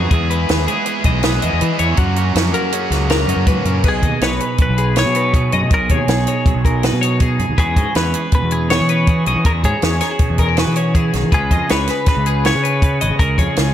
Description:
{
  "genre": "math rock and midwest emo",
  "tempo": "160 BPM",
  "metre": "5/4",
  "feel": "straight",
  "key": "unclear",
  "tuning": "A4 = 440 Hz",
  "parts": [
    { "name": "twelve-string electric guitar", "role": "accompaniment", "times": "0.0-13.7 s", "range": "F#2 to B4", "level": "-23 LUFS", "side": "right 5 dB", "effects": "none" },
    { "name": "twelve-string electric guitar", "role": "arpeggios", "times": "0.0-13.7 s", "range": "F#4 to D#5", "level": "-22 LUFS", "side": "left 6 dB", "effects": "wide subtle chorus" },
    { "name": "overdriven electric guitar", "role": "riff", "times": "0.0-3.9 s", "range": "E3 to G#4", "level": "-22 LUFS", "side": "right 1 dB", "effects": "slapback echo" },
    { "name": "fuzz fingered electric bass", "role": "bass", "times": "0.0-13.7 s", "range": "G#1 to F#3", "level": "-19 LUFS", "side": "equal", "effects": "overdrive" },
    { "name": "compact cocktail drum kit", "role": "drums", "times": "0.1-13.7 s", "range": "crash cymbal, hi-hat, kick drum, snare drum", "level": "-18 LUFS", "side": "equal", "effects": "none" },
    { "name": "twelve-string electric guitar", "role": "melody", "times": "3.9-13.7 s", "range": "G#4 to C#5", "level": "-21 LUFS", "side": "left 1 dB", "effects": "slapback echo" }
  ],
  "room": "light reverb, small room reverb",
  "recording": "none",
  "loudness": "-14 LUFS",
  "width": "side -11 dB against mid",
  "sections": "0.0-3.9 A section; 3.9-13.7 B section",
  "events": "none",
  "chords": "0.1 Emaj7; 2.0 F#maj7; 3.9 B69; 7.6 E69; 11.3 C#9"
}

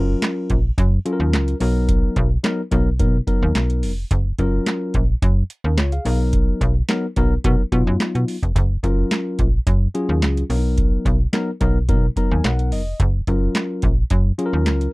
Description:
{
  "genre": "early-eighties boogie funk",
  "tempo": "108 BPM",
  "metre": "4/4",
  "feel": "straight",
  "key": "F# major",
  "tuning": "A4 = 439 Hz",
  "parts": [
    { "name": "tine electric piano", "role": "accompaniment", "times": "0.0-14.9 s", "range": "F#3 to A#5", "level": "-23 LUFS", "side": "left 2 dB", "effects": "none" },
    { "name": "slap-like FM bass", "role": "bass", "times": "0.0-14.9 s", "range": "E#1 to B2", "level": "-20 LUFS", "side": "equal", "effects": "none" },
    { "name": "booming analog drum machine", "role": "drums", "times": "0.2-14.9 s", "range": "handclaps, hi-hat, kick drum, snare drum", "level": "-20 LUFS", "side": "equal", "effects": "none" }
  ],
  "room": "little or no reverb",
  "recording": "dry, close 1970s-style studio recording",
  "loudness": "-17 LUFS",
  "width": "side -23 dB against mid",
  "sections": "0.0-14.9 A section",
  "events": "tine electric piano fill 11.9-13.0",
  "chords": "0.0 F#maj7; 1.6 Bmaj7; 4.1 F#maj7; 6.1 Bmaj7; 8.6 F#maj7; 10.5 Bmaj7; 13.0 F#maj7"
}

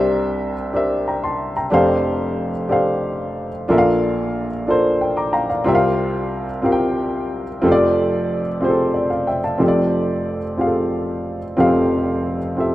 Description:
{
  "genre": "gospel",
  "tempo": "61 BPM (dotted quarters)",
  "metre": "6/8",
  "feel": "straight",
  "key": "F major",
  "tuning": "A4 = 440 Hz",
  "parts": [
    { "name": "dark upright piano", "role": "solo", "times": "0.0-12.7 s", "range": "F1 to D6", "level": "-17 LUFS", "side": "equal", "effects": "none" }
  ],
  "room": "light reverb, small room reverb",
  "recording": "rough home demo mix",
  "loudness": "-17 LUFS",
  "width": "side -15 dB against mid",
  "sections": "0.0-9.6 A section; 9.6-12.7 B section",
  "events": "upright piano fill 4.7-5.7",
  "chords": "0.0 C9; 1.7 F69; 3.7 Bbmaj7; 5.7 C7sus4; 7.6 F69"
}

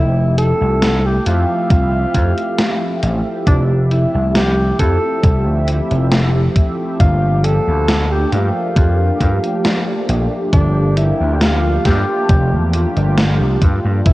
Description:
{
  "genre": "vaporwave",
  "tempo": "68 BPM",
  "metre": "4/4",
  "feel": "straight",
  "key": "unclear",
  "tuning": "A4 = 440 Hz",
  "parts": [
    { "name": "dark alto saxophone", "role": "melody", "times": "0.0-14.1 s", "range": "D4 to A4", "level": "-21 LUFS", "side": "equal", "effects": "vintage 12-bit sampler grit, tape echo" },
    { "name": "mellow synth brass", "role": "accompaniment", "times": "0.0-14.1 s", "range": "F3 to E5", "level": "-21 LUFS", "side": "equal", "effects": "phaser, wide subtle chorus, analog delay" },
    { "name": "vintage slap bass", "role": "bass", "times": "0.0-14.1 s", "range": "F1 to G2", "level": "-15 LUFS", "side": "equal", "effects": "none" },
    { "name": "gated 80s digital drum machine", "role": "drums", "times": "0.4-14.1 s", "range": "hi-hat, snare drum", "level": "-20 LUFS", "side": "equal", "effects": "gated reverb, gated reverb snare" },
    { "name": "electronic kick drum", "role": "drums", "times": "1.7-14.1 s", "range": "none", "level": "-12 LUFS", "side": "equal", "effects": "none" }
  ],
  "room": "light reverb",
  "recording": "worn, warbling old tape, cassette tape, warbly pitch drift",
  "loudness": "-13 LUFS",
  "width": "side -18 dB against mid",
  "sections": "0.0-14.1 A section",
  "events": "none",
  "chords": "0.0 Fmaj9; 7.0 Gm9"
}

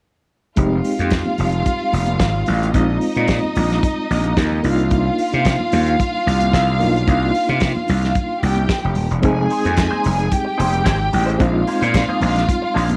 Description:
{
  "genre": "disco",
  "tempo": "111 BPM",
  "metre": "4/4",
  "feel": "straight",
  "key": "unclear",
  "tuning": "A4 = 440 Hz",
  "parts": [
    { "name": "warm studio violin section", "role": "second line", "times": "0.6-13.0 s", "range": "Eb4 to Ab5", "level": "-25 LUFS", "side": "equal", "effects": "none" },
    { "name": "mellow reed electric piano", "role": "accompaniment", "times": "0.6-13.0 s", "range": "Ab3 to Ab4", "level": "-25 LUFS", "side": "equal", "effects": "fast tremolo" },
    { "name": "gritty slap bass", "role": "bass", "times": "0.6-13.0 s", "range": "Eb1 to C3", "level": "-21 LUFS", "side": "equal", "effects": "overdrive" },
    { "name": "warm soul drum kit", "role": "drums", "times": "0.6-13.0 s", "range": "hi-hat, kick drum, snare drum", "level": "-24 LUFS", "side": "equal", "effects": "none" },
    { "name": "congas", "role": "percussion", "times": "0.9-13.0 s", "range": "none", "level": "-31 LUFS", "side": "equal", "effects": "none" },
    { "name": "clean electric guitar", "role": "accompaniment", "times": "9.2-12.9 s", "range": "Bb3 to C5", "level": "-29 LUFS", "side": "equal", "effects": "wah, ensemble chorus" },
    { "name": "group handclap", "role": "percussion", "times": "9.8-12.1 s", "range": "none", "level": "-36 LUFS", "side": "equal", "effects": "none" }
  ],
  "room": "light reverb, studio ambience",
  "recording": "none",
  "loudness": "-18 LUFS",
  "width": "mono",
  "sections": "0.6-13.0 A section",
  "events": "none",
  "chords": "0.6 Fm7; 2.7 Bb9sus4; 4.6 Cm11; 9.2 Fm7; 11.4 Bb9sus4"
}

